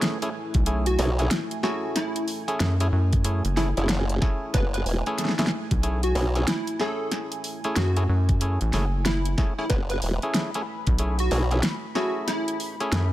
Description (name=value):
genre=glitch hop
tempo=93 BPM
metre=4/4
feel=swing 62% on 16ths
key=F# minor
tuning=A4 = 438 Hz
part: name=dark analog pad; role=sustained chords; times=0.0-13.1 s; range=A3 to B5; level=-35 LUFS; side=right 1 dB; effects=chorus, sidechain pumping
part: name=clav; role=stabs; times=0.0-13.1 s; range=A3 to G#4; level=-31 LUFS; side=equal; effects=sidechain pumping, tape echo
part: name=pop drum kit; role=drums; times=0.0-13.1 s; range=hi-hat, snare drum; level=-28 LUFS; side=equal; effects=overdrive
part: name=rubbery square bass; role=bass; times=0.5-13.1 s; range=F#1 to F#2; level=-23 LUFS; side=equal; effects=none
part: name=electronic kick drum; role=drums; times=0.5-11.0 s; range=none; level=-23 LUFS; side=equal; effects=overdrive
part: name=plucky unison lead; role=melody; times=0.9-12.6 s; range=E4 to B4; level=-31 LUFS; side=equal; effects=tape echo
part: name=formant-sweep wobble bass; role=bass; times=1.0-11.6 s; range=E1 to B1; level=-24 LUFS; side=equal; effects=chorus, tube saturation
room=little or no reverb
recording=none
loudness=-22 LUFS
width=side -14 dB against mid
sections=0.0-13.1 A section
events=none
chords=0.0 F#m9